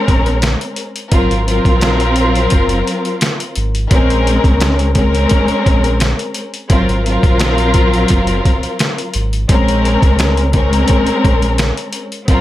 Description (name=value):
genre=hip hop, boom-bap hip-hop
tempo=86 BPM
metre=4/4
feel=swing 54% on 16ths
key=Bb minor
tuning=A4 = 440 Hz
part: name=warm studio string section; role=accompaniment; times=0.0-12.4 s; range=Gb3 to Bb4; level=-15 LUFS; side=left 1 dB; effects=cassette tape, high-pass filter, low-pass filter
part: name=sub bass with octave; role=bass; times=0.1-12.4 s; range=Gb1 to Db2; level=-16 LUFS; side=equal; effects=none
part: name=trip hop sampler-style drum kit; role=drums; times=0.1-12.4 s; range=hi-hat, kick drum, snare drum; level=-15 LUFS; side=equal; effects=none
room=light reverb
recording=none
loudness=-11 LUFS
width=side -14 dB against mid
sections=0.0-12.4 A section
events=none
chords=0.0 Bbm9; 1.1 Ab13; 3.9 Bbm9; 6.7 Ab13; 9.5 Bbm9